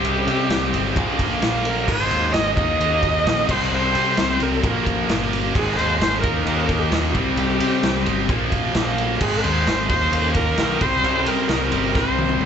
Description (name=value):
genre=hard rock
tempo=131 BPM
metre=4/4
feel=straight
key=C minor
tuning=A4 = 440 Hz
part: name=warm viola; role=melody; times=0.0-12.5 s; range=F4 to Eb5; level=-23 LUFS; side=equal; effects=slapback echo, analog delay
part: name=sweeping resonant pad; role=sustained chords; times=0.0-12.5 s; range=Bb4 to Eb6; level=-35 LUFS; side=right 2 dB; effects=none
part: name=heavy high-gain guitar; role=riff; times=0.0-12.5 s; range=Ab2 to Eb4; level=-26 LUFS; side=right 14 dB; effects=distortion, slapback echo
part: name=sludgy distorted guitar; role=riff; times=0.0-12.5 s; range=Ab2 to Eb4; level=-26 LUFS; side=left 12 dB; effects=overdrive, slapback echo
part: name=growling fingered electric bass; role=bass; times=0.0-12.5 s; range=G1 to C3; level=-25 LUFS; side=equal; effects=overdrive
part: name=raw garage drum kit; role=drums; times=0.0-12.5 s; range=crash cymbal, kick drum, ride cymbal, snare drum, toms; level=-23 LUFS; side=equal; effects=none
part: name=cranked stack guitar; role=riff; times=5.5-12.5 s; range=Ab2 to Eb4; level=-29 LUFS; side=equal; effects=overdrive, slapback echo
room=light reverb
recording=live gig heard through the venue's PA, club reverb, nothing above 8.0 kHz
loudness=-17 LUFS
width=side -8 dB against mid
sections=0.0-12.5 A section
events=drum fill 11.9-12.5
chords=0.0 Cm; 1.0 Bb; 1.9 Ab; 2.6 Eb; 3.5 Cm; 4.6 Bb; 5.5 Ab; 6.2 Eb; 7.1 Cm; 8.3 Bb; 9.2 Ab; 9.9 Eb; 10.8 Cm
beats=| 0.04 0.50 0.96 1.42 | 1.88 2.34 2.80 3.26 | 3.71 4.17 4.63 5.09 | 5.55 6.01 6.46 6.92 | 7.38 7.83 8.29 8.75 | 9.21 9.66 10.12 10.58 | 11.03 11.49 11.95 12.40